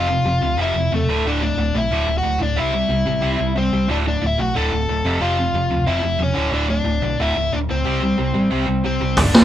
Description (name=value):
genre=punk rock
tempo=182 BPM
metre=4/4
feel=straight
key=unclear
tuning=A4 = 440 Hz
part: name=overdriven electric guitar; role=melody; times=0.0-9.4 s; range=A3 to A5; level=-22 LUFS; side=left 2 dB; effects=none
part: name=distorted electric guitar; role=riff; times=0.0-9.4 s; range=D2 to C4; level=-21 LUFS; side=equal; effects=overdrive
part: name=picked electric bass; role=bass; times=0.0-9.4 s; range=D1 to D2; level=-23 LUFS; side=right 1 dB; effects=none
part: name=raw garage drum kit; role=drums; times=9.2-9.4 s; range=hi-hat, kick drum, snare drum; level=-10 LUFS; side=right 1 dB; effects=none
room=light reverb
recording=band playing live in one room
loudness=-17 LUFS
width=side -11 dB against mid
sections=0.0-9.4 A section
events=none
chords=0.0 F; 1.1 D; 2.6 C; 3.9 D; 5.0 F; 6.4 D5; 7.9 C5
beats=0.26 0.59 0.92 | 1.25 1.58 1.91 2.24 | 2.57 2.90 3.23 3.56 | 3.89 4.22 4.55 4.88 | 5.21 5.54 5.87 6.20 | 6.53 6.86 7.19 7.52 | 7.85 8.18 8.51 8.85 | 9.18